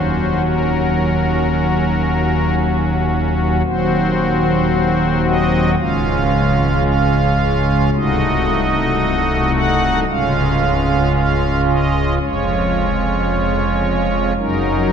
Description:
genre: classical, chorale-style piece for pipe organ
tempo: 56 BPM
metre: 4/4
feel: straight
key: Db major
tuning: A4 = 439 Hz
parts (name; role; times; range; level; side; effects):
- pipe organ, strings celeste; solo; 0.0-14.9 s; C1 to Gb5; -14 LUFS; equal; none
room: wet cathedral reverb, RT60 5.3 s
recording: minimal, uncompressed stereo recording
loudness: -14 LUFS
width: side -7 dB against mid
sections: 0.0-14.9 A section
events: none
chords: 0.0 Ebm7; 3.7 Cdim/Eb; 5.8 Db; 7.9 Cdim7; 10.1 Db; 12.2 Db/F; 14.4 Ebm7/Gb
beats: 0.45 1.53 2.59 | 3.67 4.73 5.80 6.87 | 7.94 9.02 10.09 11.15 | 12.23 13.30 14.38

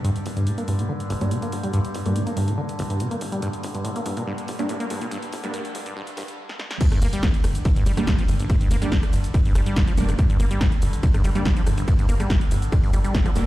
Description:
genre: driving peak-time techno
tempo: 142 BPM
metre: 4/4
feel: straight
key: G minor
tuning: A4 = 440 Hz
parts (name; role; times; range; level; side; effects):
- acid bass, saw; riff; 0.0-13.3 s; G1 to Bb3; -27 LUFS; equal; sidechain pumping, dub echo
- overtone-sweeping drone; drone; 0.0-13.5 s; G2 to D3; -33 LUFS; equal; chorus, built-in reverb, sidechain pumping
- techno drum kit; drums; 0.0-13.4 s; crash cymbal, hi-hat, ride cymbal, rim click, shaker, snare drum; -31 LUFS; equal; overdrive, low-pass filter on hats, low-pass filter on snare, low-pass filter on cymbals, low-pass filter on perc
- tight sequencer bass; bass; 0.3-13.5 s; F1 to G1; -24 LUFS; equal; sidechain pumping, high-pass filter
- rave stab; stabs; 1.2-13.4 s; G3 to D4; -31 LUFS; right 1 dB; chorus, built-in reverb, sidechain pumping, dub echo
- electronic kick drum; drums; 6.8-13.2 s; none; -19 LUFS; equal; overdrive
room: light reverb, digital ambience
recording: played on a big sound system in a bare room, large studio reverb, high-pass filter, lossy compression artefacts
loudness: -20 LUFS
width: side -16 dB against mid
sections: 0.0-6.8 A section; 6.8-13.5 B section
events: build-up 0.0-6.8; filter sweep on acid bass 0.0-6.8; filter sweep on synth stab 0.0-6.8; filter sweep 0.0-6.8; drum fill 6.5-6.8; drop 6.8-13.5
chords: 0.0 Gm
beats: | 0.05 0.47 0.89 1.31 | 1.74 2.16 2.58 3.00 | 3.43 3.85 4.27 4.69 | 5.12 5.54 5.96 6.38 | 6.81 7.23 7.65 8.07 | 8.50 8.92 9.34 9.77 | 10.19 10.61 11.03 11.46 | 11.88 12.30 12.72 13.14

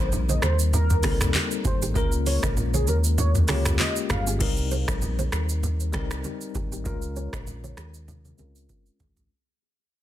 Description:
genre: afrobeats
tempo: 98 BPM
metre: 4/4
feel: swing 55% on 16ths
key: Bb dorian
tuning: A4 = 442 Hz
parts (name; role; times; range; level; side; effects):
- warm velvety synth lead; melody; 0.0-4.2 s; Ab4 to F5; -32 LUFS; equal; chorus, ping-pong delay
- bell-like tine electric piano; accompaniment; 0.0-9.3 s; G3 to Bb4; -32 LUFS; left 6 dB; medium stereo tremolo, low-pass filter
- nylon-string guitar; riff; 0.0-9.3 s; Eb4 to Eb5; -36 LUFS; right 8 dB; low-pass filter, ping-pong delay
- fingered electric bass; bass; 0.0-9.3 s; G1 to Eb2; -25 LUFS; equal; none
- booming analog drum machine; drums; 0.1-9.3 s; crash cymbal, finger snaps, handclaps, hi-hat, kick drum, rim click, shaker, toms; -26 LUFS; equal; soft clipping on snare
- congas; percussion; 0.1-9.2 s; none; -32 LUFS; right 1 dB; none
room: digital ambience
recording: dense, heavily limited modern master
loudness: -22 LUFS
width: side -13 dB against mid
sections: 0.0-4.4 A section; 4.4-9.3 B section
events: kick muted 3.2-4.4; fade-out 4.4-9.3; filter sweep 4.4-9.3; drum fill 8.1-9.3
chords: 0.0 Cm7; 2.0 Bbm7; 4.4 Cm7; 6.9 Bbm7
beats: 0.12 0.73 1.34 | 1.96 2.57 3.18 3.79 | 4.41 5.02 5.63 6.24 | 6.85 7.47 8.08 8.69

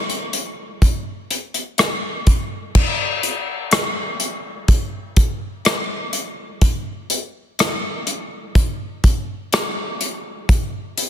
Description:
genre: pop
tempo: 62 BPM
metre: 4/4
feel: straight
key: none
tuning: none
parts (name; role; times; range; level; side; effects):
- unplugged drum kit; drums; 0.1-11.1 s; crash cymbal, hi-hat, kick drum, rim click; -18 LUFS; equal; soft clipping on snare
room: light reverb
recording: dense, heavily limited modern master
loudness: -18 LUFS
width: side -10 dB against mid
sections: 0.0-2.7 A section; 2.7-11.1 B section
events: none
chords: none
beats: 0.81 1.78 | 2.75 3.71 4.68 5.65 | 6.62 7.59 8.55 9.52 | 10.49

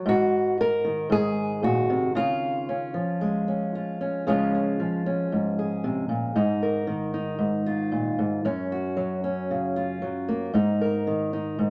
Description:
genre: folk, solo fingerstyle acoustic guitar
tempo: 115 BPM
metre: 4/4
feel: straight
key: Db major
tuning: A4 = 440 Hz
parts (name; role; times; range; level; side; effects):
- fingerpicked old ladder-braced acoustic guitar; solo; 0.0-11.7 s; Gb2 to Bb4; -26 LUFS; equal; none
room: moderate large studio reverb, RT60 1.1 s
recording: nothing above 11.0 kHz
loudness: -26 LUFS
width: mono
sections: 0.0-4.3 A section; 4.3-11.7 B section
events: none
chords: 0.1 Ab5; 1.1 Ab7; 2.2 Db; 6.4 Ab5; 8.4 Gb5; 10.5 Ab5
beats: | 0.07 0.58 1.10 1.63 | 2.15 2.68 3.21 3.74 | 4.27 4.80 5.32 5.84 | 6.37 6.88 7.41 7.93 | 8.45 8.97 9.49 10.02 | 10.54 11.07 11.60

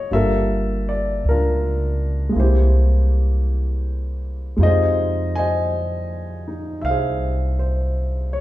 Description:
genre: jazz ballad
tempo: 54 BPM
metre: 4/4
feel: swing 66% on 8ths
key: unclear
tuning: A4 = 440 Hz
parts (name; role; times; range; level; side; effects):
- warm baby grand piano; accompaniment; 0.0-8.4 s; C3 to Ab5; -22 LUFS; left 1 dB; none
- upright bass; bass; 0.1-8.4 s; G1 to F2; -20 LUFS; equal; none
room: wet large studio reverb, RT60 1.2 s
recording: band playing live in one room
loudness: -18 LUFS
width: side -15 dB against mid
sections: 0.0-8.4 A section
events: none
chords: 0.1 Gm9; 2.4 C7b13; 4.6 Fm7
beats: | 0.10 1.23 2.35 3.47 | 4.59 5.71 6.83 7.96

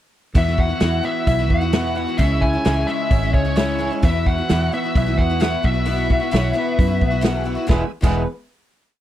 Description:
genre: folk rock and heartland rock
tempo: 131 BPM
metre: 4/4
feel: straight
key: E major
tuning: A4 = 442 Hz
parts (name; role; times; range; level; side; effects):
- picked twelve-string acoustic guitar; accompaniment; 0.3-8.2 s; E2 to F#4; -26 LUFS; left 4 dB; none
- electric guitar through a small old amp; riff; 0.3-8.2 s; E2 to G#4; -25 LUFS; equal; none
- bluesy overdriven lead guitar; melody; 0.4-7.2 s; C#5 to G#5; -24 LUFS; equal; distortion
- bright tonewheel organ; sustained chords; 0.4-7.9 s; E3 to G#5; -35 LUFS; equal; slow rotary speaker, chorus vibrato
- fingered electric bass; bass; 0.4-8.2 s; E1 to F#2; -21 LUFS; equal; none
- natural country drum kit; drums; 0.4-8.1 s; crash cymbal, hi-hat, kick drum, snare drum; -18 LUFS; equal; none
- electric slide guitar; second line; 6.4-8.3 s; B4 to C#5; -30 LUFS; right 1 dB; none
room: little or no reverb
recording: dry, close 1970s-style studio recording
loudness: -17 LUFS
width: side -12 dB against mid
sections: 0.4-7.7 verse; 7.7-9.0 final chord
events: none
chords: 0.4 Esus2; 2.2 C#m; 4.0 Bsus4; 7.7 E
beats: | 0.36 0.82 1.28 1.74 | 2.20 2.66 3.12 3.58 | 4.04 4.50 4.96 5.42 | 5.88 6.33 6.79 7.25 | 7.70 8.15

